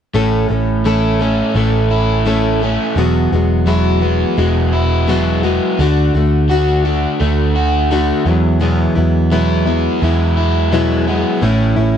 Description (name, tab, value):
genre	folk rock and heartland rock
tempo	85 BPM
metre	4/4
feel	straight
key	E mixolydian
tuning	A4 = 440 Hz
part	picked plugged-in steel-string acoustic guitar	accompaniment	0.1-12.0 s	E2 to A4	-17 LUFS	left 2 dB	none
part	crunchy overdriven guitar	riff	0.1-12.0 s	E2 to F#4	-18 LUFS	right 2 dB	spring reverb
part	hollow-body short-scale picked electric bass	bass	0.1-12.0 s	E1 to E2	-16 LUFS	equal	none
room	little or no reverb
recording	dry, close 1970s-style studio recording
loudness	-12 LUFS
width	side -8 dB against mid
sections	0.1-12.0 A section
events	none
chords	0.1 A; 3.0 Eadd9; 5.8 D; 8.3 Eadd9; 11.4 A